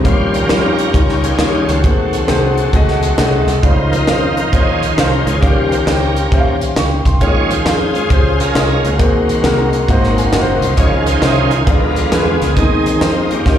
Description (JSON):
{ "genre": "uptempo gospel", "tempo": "134 BPM", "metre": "4/4", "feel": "swing 65% on 8ths", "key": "Ab major", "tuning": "A4 = 443 Hz", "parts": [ { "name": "warm concert grand piano", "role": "accompaniment", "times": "0.0-13.6 s", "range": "Ab2 to Db6", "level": "-17 LUFS", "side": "left 3 dB", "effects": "slapback echo" }, { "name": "bright tonewheel organ", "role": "sustained chords", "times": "0.0-13.6 s", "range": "Db3 to Db5", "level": "-18 LUFS", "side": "right 3 dB", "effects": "slow rotary speaker, overdrive, chorus vibrato" }, { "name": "warm symphonic string section", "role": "sustained chords", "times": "0.0-13.6 s", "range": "Eb5 to Eb6", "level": "-28 LUFS", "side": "left 1 dB", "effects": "none" }, { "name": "fingered electric bass", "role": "bass", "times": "0.0-13.6 s", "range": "Gb1 to F2", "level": "-18 LUFS", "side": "equal", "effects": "none" }, { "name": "crisp fusion drum kit", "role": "drums", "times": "0.0-13.6 s", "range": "hi-hat, kick drum, snare drum", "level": "-16 LUFS", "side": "equal", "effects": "none" } ], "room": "light reverb, studio ambience", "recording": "live gig heard through the venue's PA, recital hall reverb", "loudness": "-11 LUFS", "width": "side -10 dB against mid", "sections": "0.0-13.6 A section", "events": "tonewheel organ solo 0.0-13.6; grand piano fill 9.9-10.8", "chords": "0.1 Eb9; 1.8 Ab7b9; 3.6 Dbmaj9; 5.4 Eb13; 7.2 Eb9sus4; 9.0 Ab9/Eb; 9.9 Ab13; 10.8 Dbmaj9; 11.7 Ddim7; 12.6 Ab/Eb" }